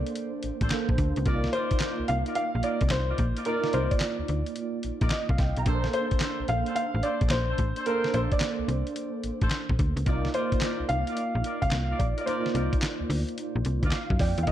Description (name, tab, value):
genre	R&B, new jack swing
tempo	109 BPM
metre	4/4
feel	swing 66% on 16ths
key	unclear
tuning	A4 = 439 Hz
part	warm baby grand piano	melody	0.0-14.5 s	Bb4 to F5	-30 LUFS	equal	none
part	tine electric piano	accompaniment	0.0-14.5 s	Bb3 to Bb5	-32 LUFS	right 3 dB	ensemble chorus
part	slap-like FM bass	bass	0.0-14.5 s	A1 to Gb2	-28 LUFS	equal	none
part	dusty soul sampler-style drum kit	drums	0.1-14.5 s	handclaps, hi-hat, kick drum, snare drum	-28 LUFS	equal	none
part	mellow horn section	stabs	0.6-14.5 s	D4 to Eb5	-37 LUFS	left 2 dB	ping-pong delay
room	light reverb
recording	dark, warm production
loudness	-25 LUFS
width	side -12 dB against mid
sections	0.0-14.5 A section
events	tine electric piano fill 13.6-14.5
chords	0.0 Bbmaj9; 1.3 Cm11; 5.7 Bbmaj9; 10.1 Cm11